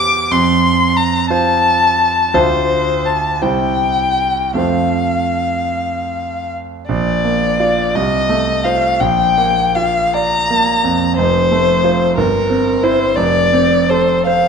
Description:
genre	classical, romantic duo for violin and grand piano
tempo	50-62 BPM (dotted quarters)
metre	6/8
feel	rubato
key	F major, Bb major from 6.9 s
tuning	A4 = 439 Hz
part	warm violin	melody	0.0-14.5 s	Bb4 to D6	-14 LUFS	left 4 dB	none
part	bright concert grand piano	accompaniment	0.0-14.5 s	F1 to D5	-16 LUFS	right 5 dB	none
room	moderate recital hall reverb, RT60 1.5 s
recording	dark, warm production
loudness	-12 LUFS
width	side -6 dB against mid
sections	0.0-6.9 A section; 6.9-14.5 B section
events	none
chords	0.3 F; 2.3 Dm7; 3.4 C; 4.6 F; 6.9 Bb; 7.9 F7/C; 9.0 Bb; 11.2 F; 12.2 C7/G; 13.2 F

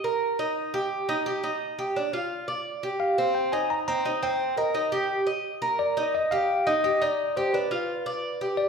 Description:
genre	latin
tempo	172 BPM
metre	4/4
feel	straight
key	unclear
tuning	A4 = 440 Hz
part	Cuban tres	arpeggios	0.0-8.7 s	C4 to Eb5	-26 LUFS	right 2 dB	none
part	bell-like tine electric piano	melody	3.0-8.7 s	B4 to Bb5	-26 LUFS	left 2 dB	auto-pan
room	wet large studio reverb, RT60 1.2 s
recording	heard from further back in the room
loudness	-24 LUFS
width	side -6 dB against mid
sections	0.0-8.7 A section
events	none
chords	0.0 Eb; 2.0 G5; 3.4 Cm7; 4.8 Ebmaj7; 6.1 Ebmaj9; 7.5 G7

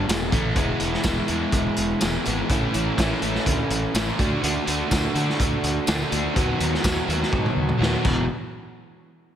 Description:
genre	classic rock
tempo	124 BPM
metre	4/4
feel	straight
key	E mixolydian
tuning	A4 = 440 Hz
part	overdriven semi-hollow guitar	riff	0.0-8.2 s	E2 to F#4	-24 LUFS	equal	slapback echo
part	fuzz fingered electric bass	bass	0.0-8.3 s	E1 to D3	-28 LUFS	equal	overdrive
part	vintage drum kit	drums	0.1-8.2 s	crash cymbal, hi-hat, kick drum, snare drum, tambourine, toms	-24 LUFS	equal	none
room	moderate lush hall reverb, RT60 2.3 s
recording	big arena sound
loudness	-20 LUFS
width	side -10 dB against mid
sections	0.6-8.3 A section; 8.3-9.4 B section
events	drum fill 7.3-8.3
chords	0.1 E5; 0.6 E; 2.5 A; 4.2 D; 6.4 B/D#; 8.0 E5; 8.3 N.C.

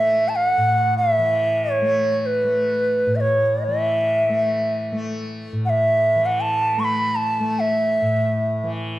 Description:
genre	indian classical, Hindustani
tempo	free time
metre	none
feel	none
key	A raga bhupali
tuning	A4 = 440 Hz
part	bright reedy bansuri	melody	0.0-8.7 s	B4 to C#6	-18 LUFS	right 1 dB	none
part	tanpura	drone	0.0-9.0 s	A2 to A3	-25 LUFS	left 1 dB	none
room	moderate recital hall reverb, RT60 1.4 s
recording	dark, warm production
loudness	-18 LUFS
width	side -15 dB against mid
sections	0.0-9.0 A section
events	none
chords	none

